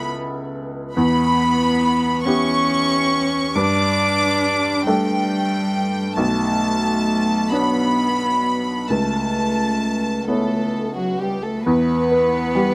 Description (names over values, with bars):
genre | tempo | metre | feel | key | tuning
neoclassical piano and strings | 43-47 BPM (dotted quarters) | 6/8 | rubato | E dorian | A4 = 439 Hz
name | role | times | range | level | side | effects
warm studio violin section | melody | 0.0-12.7 s | F#4 to D6 | -24 LUFS | equal | none
warm cello | second line | 0.0-12.7 s | F#3 to D4 | -24 LUFS | equal | none
felt-muted upright piano | accompaniment | 0.0-12.7 s | B1 to C#5 | -24 LUFS | equal | none
room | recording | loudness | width
light reverb | none | -20 LUFS | mono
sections
0.0-11.7 A section; 11.7-12.7 B section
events
none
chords
0.0 Aadd9/C#; 1.0 Em; 3.6 Gsus2; 6.2 Bmadd9; 8.9 Aadd9/C#; 11.7 Em